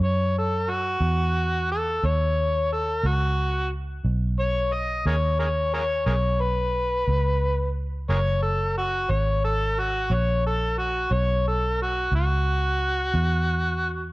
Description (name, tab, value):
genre	slow blues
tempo	59 BPM (dotted quarters)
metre	12/8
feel	straight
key	unclear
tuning	A4 = 440 Hz
part	overdriven harmonica	melody	0.0-14.1 s	F#4 to D#5	-25 LUFS	left 1 dB	none
part	vintage muted fingered electric bass	bass	0.0-14.1 s	F#1 to F#2	-24 LUFS	equal	none
room	moderate spring reverb, RT60 1.6 s, studio ambience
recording	dark, warm production, nothing above 10.7 kHz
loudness	-22 LUFS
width	side -19 dB against mid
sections	0.0-14.1 A section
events	none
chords	0.0 F#5; 4.0 Badd9; 8.1 F#9